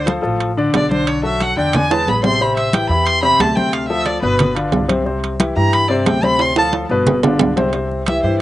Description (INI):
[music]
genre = Afro-Cuban jazz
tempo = 180 BPM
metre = 4/4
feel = straight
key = C major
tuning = A4 = 442 Hz
[part]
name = bright erhu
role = second line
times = 0.0-8.4 s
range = B4 to C6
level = -18 LUFS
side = equal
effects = none
[part]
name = upright bass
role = bass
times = 0.0-8.4 s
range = G1 to G2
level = -22 LUFS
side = equal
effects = none
[part]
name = warm baby grand piano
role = accompaniment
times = 0.1-8.4 s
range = B2 to D5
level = -18 LUFS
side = left 2 dB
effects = none
[part]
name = congas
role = percussion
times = 0.1-8.4 s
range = none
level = -21 LUFS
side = equal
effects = none
[part]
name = timbales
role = percussion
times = 0.1-8.2 s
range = none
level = -21 LUFS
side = right 6 dB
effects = slapback echo
[part]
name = vibraphone with soft mallets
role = melody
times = 8.1-8.4 s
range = C5 to E5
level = -21 LUFS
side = right 1 dB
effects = none
[sound]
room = little or no reverb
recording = recorded outdoors, with no room sound, nothing above 10.6 kHz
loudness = -14 LUFS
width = side -15 dB against mid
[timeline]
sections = 0.0-7.7 A section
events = erhu solo 0.0-7.7; drum fill 1.9-2.4, 6.4-7.7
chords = 0.0 Dm; 1.1 Bm7; 1.7 E7; 2.4 Am7; 3.7 Dm7; 4.4 G7; 5.1 Cadd9; 6.4 Dm7; 7.1 G7; 7.7 C